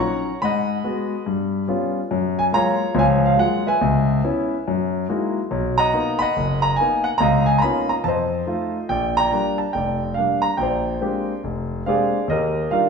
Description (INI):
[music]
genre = solo jazz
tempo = 142 BPM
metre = 4/4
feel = swing 65% on 8ths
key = F# major, Bb major from 8.9 s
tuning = A4 = 440 Hz
[part]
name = clear concert grand piano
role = solo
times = 0.0-12.9 s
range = F1 to C#6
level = -18 LUFS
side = equal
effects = none
[sound]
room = wet stone room reverb, RT60 1.2 s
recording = band playing live in one room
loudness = -18 LUFS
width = side -5 dB against mid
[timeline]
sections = 0.0-8.9 A section; 8.9-12.9 B section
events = none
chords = 0.4 G#m7; 1.3 G7#11; 2.1 F#maj9; 3.8 C#m7; 4.7 F#13; 5.5 Bmaj7; 7.2 C#13; 8.1 F7; 8.9 Bb6; 10.6 Bb13; 12.3 Ebmaj9